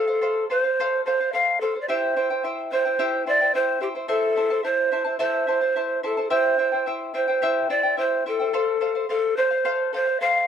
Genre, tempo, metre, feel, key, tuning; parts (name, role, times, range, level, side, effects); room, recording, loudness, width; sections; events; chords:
andean folk, Andean ensemble; 108 BPM; 2/4; straight; A4 = 439 Hz
breathy large pan pipes; melody; 0.0-10.5 s; G4 to F5; -21 LUFS; equal
charango; accompaniment; 0.0-10.5 s; E4 to A5; -27 LUFS; left 1 dB
little or no reverb; close, detailed microphones; -20 LUFS; side -8 dB against mid
0.0-6.3 A section; 6.3-10.5 A section
0.0 F; 1.9 C; 4.1 Am; 6.3 C; 8.5 F